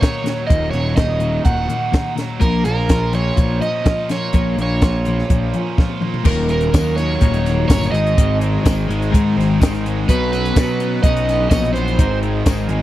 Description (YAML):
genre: indie rock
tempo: 125 BPM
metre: 4/4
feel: straight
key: Eb minor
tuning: A4 = 440 Hz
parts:
  - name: overdriven semi-hollow guitar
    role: melody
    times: 0.0-12.2 s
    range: Bb4 to Gb5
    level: -22 LUFS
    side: right 3 dB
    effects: tape echo
  - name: distorted electric guitar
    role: riff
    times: 0.0-12.8 s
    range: Eb2 to F4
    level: -27 LUFS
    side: right 6 dB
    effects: overdrive, wide subtle chorus
  - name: twelve-string electric guitar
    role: riff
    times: 0.0-12.8 s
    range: Eb2 to Eb4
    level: -22 LUFS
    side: left 6 dB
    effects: none
  - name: compact cocktail drum kit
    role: drums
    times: 0.0-12.8 s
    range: crash cymbal, hi-hat, kick drum, snare drum, toms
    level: -16 LUFS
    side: equal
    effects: none
  - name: fuzz picked electric bass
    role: bass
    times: 0.5-12.8 s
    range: Eb1 to B2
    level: -20 LUFS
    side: equal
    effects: overdrive
  - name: phased analog pad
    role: sustained chords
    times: 6.2-12.8 s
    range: C4 to Bb5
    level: -32 LUFS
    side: equal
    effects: phaser, chorus
  - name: tambourine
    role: percussion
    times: 6.7-12.6 s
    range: none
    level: -38 LUFS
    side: left 5 dB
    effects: none
room: little or no reverb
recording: dry, close 1970s-style studio recording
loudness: -15 LUFS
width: side -14 dB against mid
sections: 0.0-6.3 A section; 6.3-12.8 B section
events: drum fill 5.8-6.3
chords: 0.0 Ebm; 2.4 Bbm; 6.3 Ebm7; 7.9 Ab; 10.1 Badd9; 12.0 Ab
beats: 0.02 | 0.50 0.98 1.46 1.94 | 2.42 2.90 3.38 3.86 | 4.34 4.82 5.30 5.78 | 6.26 6.74 7.22 7.70 | 8.18 8.65 9.13 9.61 | 10.09 10.56 11.04 11.51 | 11.98 12.46